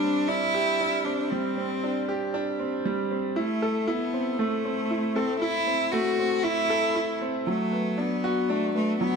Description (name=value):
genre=electronica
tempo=117 BPM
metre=4/4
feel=straight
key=A dorian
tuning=A4 = 440 Hz
part: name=rich cello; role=melody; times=0.0-9.2 s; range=A3 to F#4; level=-26 LUFS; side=equal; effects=none
part: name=clear upright piano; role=riff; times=0.0-9.2 s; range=F#3 to A4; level=-27 LUFS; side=right 1 dB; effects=tape echo
room=wet echo chamber reverb, RT60 1.4 s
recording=none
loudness=-24 LUFS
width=side -5 dB against mid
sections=0.0-9.2 A section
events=none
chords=0.0 Gsus4; 3.4 Am; 7.5 Bm